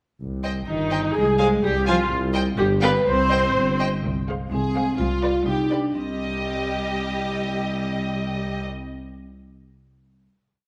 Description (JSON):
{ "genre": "cinematic, playful, whimsical film cue", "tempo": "126 BPM", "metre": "2/4", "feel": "straight", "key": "C minor", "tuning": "A4 = 442 Hz", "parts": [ { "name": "mellow tuba", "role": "bass", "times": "0.2-4.0 s", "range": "G1 to C2", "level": "-30 LUFS", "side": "equal", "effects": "none" }, { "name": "warm studio double bass section", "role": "bass", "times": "0.2-8.6 s", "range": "G1 to C2", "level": "-31 LUFS", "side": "equal", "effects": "none" }, { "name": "rich studio violin section", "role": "melody", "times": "0.4-8.6 s", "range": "D5 to Ab5", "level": "-34 LUFS", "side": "equal", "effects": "none" }, { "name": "warm studio violin section", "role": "second line", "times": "0.4-8.6 s", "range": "F4 to F5", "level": "-33 LUFS", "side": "equal", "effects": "none" }, { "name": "vibraphone with medium hard mallets", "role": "melody", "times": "0.7-9.2 s", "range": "C4 to C5", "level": "-29 LUFS", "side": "equal", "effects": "none" }, { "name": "warm studio viola section", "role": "accompaniment", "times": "0.7-8.6 s", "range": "G3 to C5", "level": "-28 LUFS", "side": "equal", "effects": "none" }, { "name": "rich studio cello section", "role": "bass", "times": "0.7-8.6 s", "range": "C2 to C4", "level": "-31 LUFS", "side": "equal", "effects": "none" } ], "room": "moderate scoring stage reverb, RT60 1.6 s", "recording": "none", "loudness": "-23 LUFS", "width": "mono", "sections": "0.2-4.0 A section; 4.0-5.9 coda; 5.9-7.9 final chord", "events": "none", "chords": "0.2 Cm; 1.2 Fm/C; 2.1 N.C.; 2.6 G; 3.1 C5; 4.0 Fm/C; 5.0 G7/C; 5.9 Cm" }